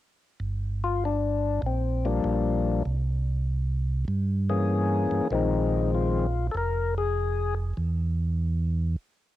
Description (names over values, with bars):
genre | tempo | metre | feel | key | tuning
jazz | 98 BPM | 4/4 | swing 67% on 8ths | unclear | A4 = 440 Hz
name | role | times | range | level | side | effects
mellow tonewheel organ | bass | 0.4-9.0 s | F1 to G2 | -26 LUFS | right 1 dB | slow rotary speaker
percussive tonewheel organ | melody | 0.8-7.5 s | Eb3 to Bb4 | -26 LUFS | left 5 dB | slow rotary speaker, overdrive, cassette tape
room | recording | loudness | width
light reverb | home recording on cassette | -24 LUFS | side -14 dB against mid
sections
0.4-9.4 A section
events
break 9.0-9.4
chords
0.4 Gm7; 2.9 C7b9b13; 5.3 Bb9sus4; 7.8 N.C.